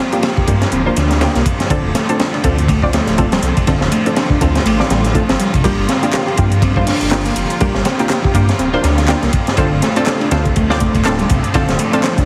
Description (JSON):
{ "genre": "breakbeat, breaks", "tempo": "122 BPM", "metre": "4/4", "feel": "swing 58% on 16ths", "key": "G minor", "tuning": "A4 = 440 Hz", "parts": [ { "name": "rich symphonic string section", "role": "sustained chords", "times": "0.0-12.3 s", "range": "D3 to F4", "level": "-26 LUFS", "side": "equal", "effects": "vintage 12-bit sampler grit, sidechain pumping" }, { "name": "reed electric piano", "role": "riff", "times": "0.0-12.2 s", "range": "C3 to G4", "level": "-22 LUFS", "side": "equal", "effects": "overdrive, tape echo" }, { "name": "orchestra-hit-like synth stab", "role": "stabs", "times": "0.1-12.3 s", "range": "Bb3 to D5", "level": "-23 LUFS", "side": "equal", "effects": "built-in reverb, tape echo" }, { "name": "house drum kit", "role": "drums", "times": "0.1-12.3 s", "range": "handclaps, hi-hat", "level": "-29 LUFS", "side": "equal", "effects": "overdrive" }, { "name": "crunchy breakbeat drum kit", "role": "drums", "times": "0.2-12.3 s", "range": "hi-hat, kick drum, ride cymbal, snare drum", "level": "-19 LUFS", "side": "equal", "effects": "none" }, { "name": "dark detuned saw bass", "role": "bass", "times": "0.5-11.7 s", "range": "D1 to G2", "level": "-20 LUFS", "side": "equal", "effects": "tube saturation" } ], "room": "light reverb", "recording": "heavily compressed radio sound, multiband compression, vinyl crackle", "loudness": "-15 LUFS", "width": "mono", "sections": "0.0-12.3 A section", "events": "filter sweep on synth stab 0.0-12.3", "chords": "0.0 Gm7; 1.7 Dm7; 5.6 Gm7; 9.6 Dm7" }